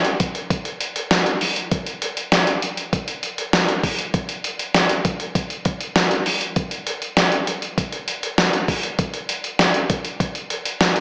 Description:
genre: pop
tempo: 99 BPM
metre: 4/4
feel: straight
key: none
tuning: none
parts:
  - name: dusty soul sampler-style drum kit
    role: drums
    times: 0.0-11.0 s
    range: hi-hat, kick drum, snare drum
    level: -22 LUFS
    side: equal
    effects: none
room: wet lush hall reverb, RT60 1.9 s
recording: small speaker sound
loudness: -22 LUFS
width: mono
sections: 0.0-11.0 A section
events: none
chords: none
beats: 0.50 1.11 | 1.72 2.32 2.93 3.53 | 4.14 4.75 5.35 5.96 | 6.56 7.17 7.78 8.38 | 8.99 9.59 10.20 10.80

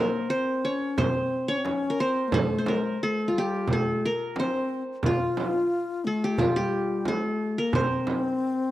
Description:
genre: Turkish makam ensemble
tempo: 89 BPM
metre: 4/4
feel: straight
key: C makam hicaz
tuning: A4 = 440 Hz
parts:
  - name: qanun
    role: melody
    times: 0.0-8.7 s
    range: F4 to Db5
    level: -27 LUFS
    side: equal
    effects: none
  - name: bright reedy wooden-headed alto flute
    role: second line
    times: 0.0-8.7 s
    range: G3 to F4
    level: -29 LUFS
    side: left 3 dB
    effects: none
  - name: darbuka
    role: percussion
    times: 0.6-8.7 s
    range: none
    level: -32 LUFS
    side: equal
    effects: none
  - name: frame drum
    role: percussion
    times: 1.0-8.2 s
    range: none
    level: -30 LUFS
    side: right 4 dB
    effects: none
room: light reverb, studio reverb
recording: dry, close 1970s-style studio recording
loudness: -24 LUFS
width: side -14 dB against mid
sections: 0.0-8.7 A section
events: none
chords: none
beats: 0.30 0.98 1.65 | 2.33 3.00 3.68 4.35 | 5.03 5.71 6.38 7.06 | 7.73 8.41

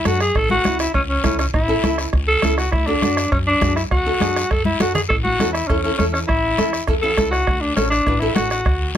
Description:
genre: latin, cumbia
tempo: 202 BPM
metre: 4/4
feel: straight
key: A major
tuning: A4 = 439 Hz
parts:
  - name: growling alto saxophone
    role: melody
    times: 0.0-8.9 s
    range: C#4 to A4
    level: -20 LUFS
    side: left 1 dB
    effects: none
  - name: flamenco guitar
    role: accompaniment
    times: 0.0-9.0 s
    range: C#4 to B4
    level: -24 LUFS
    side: equal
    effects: none
  - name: upright bass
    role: bass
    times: 0.1-8.9 s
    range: A1 to F#2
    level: -24 LUFS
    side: equal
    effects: none
  - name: bombo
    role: percussion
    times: 0.1-8.8 s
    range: none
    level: -23 LUFS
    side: right 1 dB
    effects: none
  - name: congas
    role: percussion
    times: 0.1-9.0 s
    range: none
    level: -24 LUFS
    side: left 1 dB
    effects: none
  - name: guiro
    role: percussion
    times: 0.1-9.0 s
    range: none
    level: -30 LUFS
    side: left 6 dB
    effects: none
room: little or no reverb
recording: close, detailed microphones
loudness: -16 LUFS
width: side -10 dB against mid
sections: 0.0-5.1 A section; 5.1-9.0 B section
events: drum fill 4.7-5.1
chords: 0.3 A; 2.7 D; 5.1 A; 7.5 D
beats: 0.05 | 0.35 0.65 0.94 1.24 | 1.54 1.83 2.13 2.43 | 2.73 3.02 3.32 3.62 | 3.91 4.21 4.51 4.80 | 5.10 5.40 5.70 5.99 | 6.29 6.58 6.88 7.18 | 7.47 7.77 8.07 8.36 | 8.66 8.96

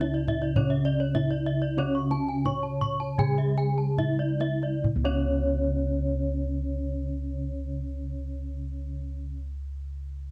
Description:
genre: Balinese gamelan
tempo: 66-112 BPM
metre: 4/4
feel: straight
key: C# pelog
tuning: A4 = 439 Hz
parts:
  - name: gamelan-type bronze metallophone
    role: melody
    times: 0.0-9.4 s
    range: C#4 to C#5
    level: -35 LUFS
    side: equal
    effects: none
  - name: gamelan-type bronze metallophone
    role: accompaniment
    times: 0.0-9.4 s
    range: C#3 to G#3-30c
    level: -40 LUFS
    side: equal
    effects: none
  - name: gamelan-type bronze metallophone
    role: arpeggios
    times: 0.0-9.4 s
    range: C#5 to C#6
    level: -36 LUFS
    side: equal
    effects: none
  - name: gamelan-type bossed gongs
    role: bass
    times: 0.0-9.3 s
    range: C#2 to D4+20c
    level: -31 LUFS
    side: equal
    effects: none
  - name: kendang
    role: percussion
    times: 0.0-5.3 s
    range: none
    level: -33 LUFS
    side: equal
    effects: none
  - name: gamelan-type bronze metallophone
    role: arpeggios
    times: 0.1-9.4 s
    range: C#5 to C#6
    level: -39 LUFS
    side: equal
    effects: none
room: light reverb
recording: cassette tape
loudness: -28 LUFS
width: mono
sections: 0.0-4.9 A section; 4.9-10.3 B section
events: slowing down 0.0-4.9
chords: none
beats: 0.01 0.56 1.15 | 1.77 2.45 3.18 3.98 | 4.85 5.77 6.68 7.60 | 8.52

